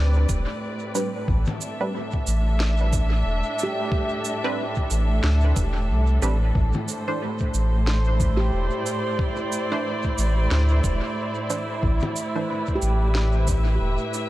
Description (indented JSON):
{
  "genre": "ambient dub",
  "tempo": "91 BPM",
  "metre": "4/4",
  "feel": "swing 59% on 16ths",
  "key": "A minor",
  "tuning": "A4 = 437 Hz",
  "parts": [
    { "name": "muted studio string section", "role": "sustained chords", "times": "0.0-14.3 s", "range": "A2 to E5", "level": "-27 LUFS", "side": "right 1 dB", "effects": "none" },
    { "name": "warm sub bass", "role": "bass", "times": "0.0-14.0 s", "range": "E1 to D2", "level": "-20 LUFS", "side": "equal", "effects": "tube saturation" },
    { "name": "electronic cabasa, congas and snare drum", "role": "drums", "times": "0.3-14.3 s", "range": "none", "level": "-32 LUFS", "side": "equal", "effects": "small room ambience, dub echo" },
    { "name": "electronic kick drum", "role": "drums", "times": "0.3-13.6 s", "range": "none", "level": "-26 LUFS", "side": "equal", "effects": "small room ambience" },
    { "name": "filtered dub chord stab", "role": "stabs", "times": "0.9-12.5 s", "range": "E3 to C5", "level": "-32 LUFS", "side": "right 2 dB", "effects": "chorus, dub echo" },
    { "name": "handpan", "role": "arpeggios", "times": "3.6-14.1 s", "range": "G4", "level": "-33 LUFS", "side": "right 1 dB", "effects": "dub echo" }
  ],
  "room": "light reverb",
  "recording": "none",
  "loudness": "-21 LUFS",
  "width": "side -16 dB against mid",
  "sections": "0.0-14.3 A section",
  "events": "none",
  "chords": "0.0 Am11"
}